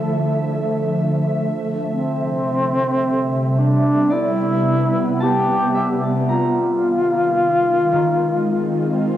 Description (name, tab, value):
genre	ambient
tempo	55 BPM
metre	4/4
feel	straight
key	unclear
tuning	A4 = 440 Hz
part	wooden-headed alto flute	melody	0.0-9.2 s	C4 to G4	-19 LUFS	left 1 dB	cassette tape, plate reverb, analog delay
part	ethereal airy pad	sustained chords	0.0-9.2 s	C3 to E5	-20 LUFS	equal	ensemble chorus, built-in reverb, cassette tape, plate reverb
part	concert harp	arpeggios	4.1-9.2 s	Eb3 to Bb5	-26 LUFS	left 1 dB	cassette tape, plate reverb, analog delay
room	wet studio reverb, RT60 0.6 s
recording	home recording on cassette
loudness	-16 LUFS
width	side -12 dB against mid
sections	0.0-9.2 A section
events	none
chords	0.0 Dmadd9; 1.9 Cmaj7; 6.3 Ab6